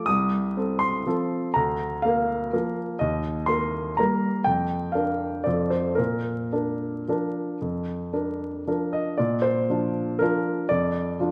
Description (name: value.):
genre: classical, piano waltz.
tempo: 108-130 BPM.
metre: 3/4.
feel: rubato.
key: Bb major.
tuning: A4 = 440 Hz.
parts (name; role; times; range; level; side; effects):
warm baby grand piano; solo; 0.0-11.3 s; C2 to Eb6; -26 LUFS; equal; none.
room: wet recital hall reverb, RT60 1.7 s.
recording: vinyl crackle.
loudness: -26 LUFS.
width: mono.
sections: 0.0-9.2 A section; 9.2-11.3 B section.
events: none.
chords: 0.1 F7/C; 1.5 Bb/D; 3.0 Eb; 4.5 Bb/F; 5.5 F; 6.0 Bb.